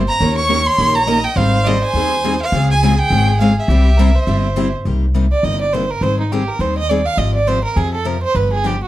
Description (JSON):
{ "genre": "acoustic string swing (jazz manouche)", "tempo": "206 BPM", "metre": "4/4", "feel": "swing 59% on 8ths", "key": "C minor from 4.9 s", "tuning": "A4 = 440 Hz", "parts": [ { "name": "rich violin", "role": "second line", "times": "0.0-8.9 s", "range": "Eb4 to F5", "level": "-20 LUFS", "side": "right 3 dB", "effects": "none" }, { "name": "picked steel-string acoustic guitar", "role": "accompaniment", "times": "0.0-4.7 s", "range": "C3 to Bb4", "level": "-24 LUFS", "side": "right 4 dB", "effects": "none" }, { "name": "upright bass", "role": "bass", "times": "0.0-8.8 s", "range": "G1 to F2", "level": "-17 LUFS", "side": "equal", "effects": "none" }, { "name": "warm violin", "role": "melody", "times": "0.1-4.7 s", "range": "D5 to Db6", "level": "-18 LUFS", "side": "right 1 dB", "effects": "none" }, { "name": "picked steel-string acoustic guitar", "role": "accompaniment", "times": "0.2-8.8 s", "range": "C3 to Bb4", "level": "-21 LUFS", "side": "left 5 dB", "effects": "none" } ], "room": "light reverb", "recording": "dark, warm production", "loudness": "-13 LUFS", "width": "side -14 dB against mid", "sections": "0.0-4.9 A section; 4.9-8.9 B section", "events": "violin solo 4.9-8.9", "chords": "0.2 Eb7; 1.4 Abmaj7; 2.5 Dbmaj7; 3.7 C; 4.9 Cm7; 6.0 Abmaj7; 7.2 Fmadd9/Ab; 8.3 G7", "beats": "| 0.20 0.49 0.78 1.07 | 1.36 1.66 1.95 2.24 | 2.53 2.82 3.11 3.40 | 3.69 3.98 4.27 4.56 | 4.85 5.14 5.44 5.73 | 6.02 6.31 6.60 6.89 | 7.18 7.47 7.76 8.06 | 8.35 8.64" }